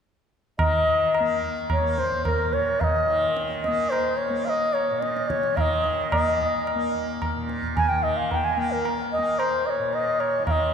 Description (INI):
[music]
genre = indian classical, Hindustani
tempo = 109 BPM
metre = 5/4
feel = straight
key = unclear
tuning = A4 = 443 Hz
[part]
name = bright reedy bansuri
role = melody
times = 0.6-10.7 s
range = Bb4 to Ab5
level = -23 LUFS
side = equal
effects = none
[part]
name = tanpura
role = drone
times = 0.6-10.7 s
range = Bb2 to Bb3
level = -31 LUFS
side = equal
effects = none
[part]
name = tabla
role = percussion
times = 0.6-10.7 s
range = none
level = -28 LUFS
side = right 1 dB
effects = none
[sound]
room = wet church reverb, RT60 3.1 s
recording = recorded in a church or concert hall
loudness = -21 LUFS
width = side -7 dB against mid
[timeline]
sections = 0.6-10.7 A section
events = speeding up 0.6-10.7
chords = none